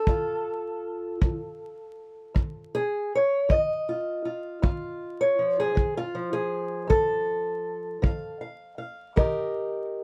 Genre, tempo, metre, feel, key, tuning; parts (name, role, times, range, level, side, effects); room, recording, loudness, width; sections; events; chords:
acoustic country blues, solo or duo; 53 BPM (dotted quarters); 12/8; straight; A4 = 440 Hz
fingerpicked old ladder-braced acoustic guitar; melody; 0.0-10.0 s; F2 to F5; -29 LUFS; equal
kick drum; drums; 0.1-9.3 s; -27 LUFS; equal
moderate booth ambience, RT60 0.2 s; vinyl crackle; -27 LUFS; mono
0.0-10.0 A section
0.1 N.C.; 9.2 Eb